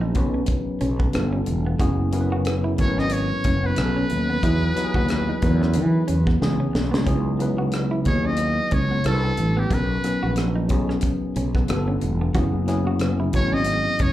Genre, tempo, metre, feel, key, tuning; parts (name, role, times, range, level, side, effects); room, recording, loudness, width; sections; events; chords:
R&B, neo-soul; 91 BPM; 4/4; swing 58% on 16ths; A4 = 436 Hz
clean electric guitar; second line; 0.0-14.1 s; B3 to F#4; -32 LUFS; right 4 dB; spring reverb, slapback echo
tine electric piano; accompaniment; 0.0-14.1 s; E3 to B4; -26 LUFS; left 2 dB; slapback echo
fretless electric bass; bass; 0.0-14.1 s; E1 to E3; -22 LUFS; equal
tight funk drum kit; drums; 0.1-14.1 s; hi-hat, kick drum, rim click, snare drum; -25 LUFS; equal
trumpet with metal mute; melody; 2.8-14.1 s; G4 to D#5; -26 LUFS; equal; slapback echo
little or no reverb; live gig heard through the venue's PA, club reverb; -19 LUFS; side -14 dB against mid
0.0-7.1 A section; 7.1-14.1 A section
drum fill 6.4-7.1
0.0 Bmaj7; 1.1 G9; 1.8 F#7sus4; 3.8 B7; 4.4 Emaj9; 6.4 C#m9; 7.1 C#m11; 9.0 Cmaj7; 9.7 Bmaj7; 11.7 G9; 12.3 F#7sus4